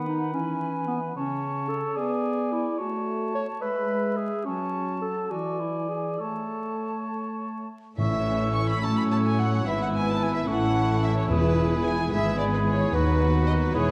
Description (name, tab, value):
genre	quick classical-period movement for symphony orchestra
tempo	73 BPM (dotted quarters)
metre	6/8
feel	rubato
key	A major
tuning	A4 = 440 Hz
part	dark cor anglais	second line	0.0-13.9 s	F#4 to E5	-35 LUFS	equal	none
part	mellow clarinet	second line	0.0-13.9 s	B3 to C#5	-35 LUFS	equal	none
part	silver concert flute	second line	0.0-13.9 s	F#5 to E6	-38 LUFS	equal	none
part	mellow French horn section	sustained chords	0.0-13.9 s	C#3 to E4	-34 LUFS	equal	none
part	warm chamber violin section	melody	8.0-13.9 s	B4 to C#6	-32 LUFS	equal	none
part	warm chamber violin section	second line	8.0-13.9 s	C#4 to C#5	-37 LUFS	equal	none
part	warm studio viola section	accompaniment	8.0-13.9 s	E3 to C#4	-35 LUFS	equal	none
part	dark chamber cello section	bass	8.0-13.9 s	D#2 to A3	-32 LUFS	equal	none
part	warm chamber double bass section	bass	8.0-13.9 s	E1 to A2	-30 LUFS	equal	none
part	timpani	percussion	8.0-8.8, 11.3-12.1 s	E2 to A2	-33 LUFS	equal	none
room	wet scoring stage reverb, RT60 1.8 s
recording	dark, warm production, vinyl crackle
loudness	-26 LUFS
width	mono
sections	0.0-8.0 A section; 8.0-13.9 B section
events	none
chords	0.3 E; 1.2 A/C#; 2.0 G#dim/B; 2.8 F#m/A; 3.6 E/G#; 4.5 F#m; 5.3 E7; 6.2 A; 9.7 E/G#; 10.5 A; 11.3 E; 12.9 B/D#